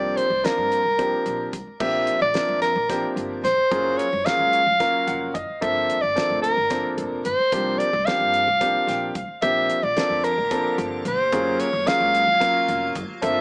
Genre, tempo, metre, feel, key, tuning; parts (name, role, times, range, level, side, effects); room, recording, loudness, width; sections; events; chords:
electric jazz fusion; 221 BPM (eighths); 7/8; straight; Bb lydian; A4 = 440 Hz
warm soprano saxophone; melody; 0.0-13.4 s; Bb4 to F5; -23 LUFS; equal
clear grand piano; accompaniment; 0.0-13.4 s; F3 to G5; -29 LUFS; equal
upright bass; bass; 0.0-13.4 s; F1 to G2; -37 LUFS; equal
damped 70s drum kit; drums; 0.2-13.4 s; crash cymbal, hi-hat, kick drum, snare drum; -34 LUFS; equal
icy glass pad; sustained chords; 10.2-13.4 s; C3 to G4; -37 LUFS; equal; chorus, built-in reverb
moderate club reverb, RT60 0.5 s; small speaker sound; -22 LUFS; mono
0.0-1.8 A section; 1.8-13.4 A section
grand piano fill 4.8-5.6, 8.6-9.4
0.0 C9sus4; 1.8 Bb6; 3.7 Gbmaj7; 5.6 Gm11; 7.5 C9sus4; 9.4 Bb6; 11.3 Gbmaj7